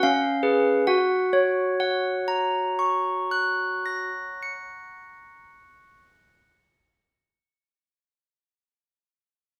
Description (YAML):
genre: classical, lullaby for handbells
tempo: 68 BPM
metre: 3/4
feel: straight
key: F# major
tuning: A4 = 440 Hz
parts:
  - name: handbells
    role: solo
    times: 0.0-7.6 s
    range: C#4 to C#7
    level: -24 LUFS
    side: equal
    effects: slapback echo
room: moderate studio reverb, RT60 0.8 s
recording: heard from further back in the room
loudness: -24 LUFS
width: mono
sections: 0.9-6.2 A section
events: none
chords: 0.0 C#7; 0.9 F#